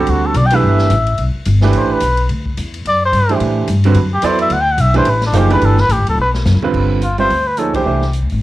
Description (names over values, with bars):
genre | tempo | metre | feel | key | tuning
modal jazz | 216 BPM | 4/4 | swing 60% on 8ths | unclear | A4 = 442 Hz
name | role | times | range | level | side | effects
trumpet with cup mute | melody | 0.0-8.1 s | D4 to G5 | -16 LUFS | left 1 dB | cassette tape
clear grand piano | accompaniment | 0.0-8.0 s | D3 to E5 | -17 LUFS | right 5 dB | cassette tape
upright bass | bass | 0.0-8.4 s | D1 to A2 | -15 LUFS | left 1 dB | none
swinging big-band drum kit | drums | 0.1-8.3 s | crash cymbal, hi-hat, kick drum, ride cymbal, snare drum, toms | -28 LUFS | left 1 dB | none
room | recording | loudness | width
light reverb, small room ambience | home recording on cassette | -12 LUFS | side -16 dB against mid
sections
0.0-6.7 A section; 6.7-8.4 B section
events
muted trumpet solo 0.0-6.7; drum fill 6.2-6.7; band accent 7.7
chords
0.1 Gadd9; 2.3 D9sus4; 4.5 Gadd9; 6.7 G9sus4